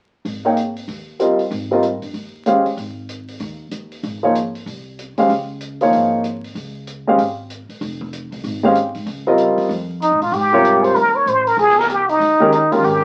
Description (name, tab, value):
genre	modal jazz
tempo	191 BPM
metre	4/4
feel	swing 62% on 8ths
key	Ab major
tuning	A4 = 439 Hz
part	upright bass	bass	0.2-13.0 s	F1 to A2	-32 LUFS	equal	none
part	open jazz drum kit	drums	0.3-12.9 s	hi-hat, kick drum, snare drum	-39 LUFS	equal	none
part	warm grand piano	accompaniment	0.4-13.0 s	C3 to G5	-18 LUFS	equal	none
part	trumpet with plunger mute	melody	10.0-13.0 s	Eb4 to Db5	-16 LUFS	equal	none
room	wet studio reverb, RT60 0.5 s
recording	very old 78 rpm record, vinyl crackle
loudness	-17 LUFS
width	mono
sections	0.3-10.3 A section; 10.3-13.0 B section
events	none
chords	0.3 Abmaj7; 5.3 Dbmaj9; 10.3 Abmaj9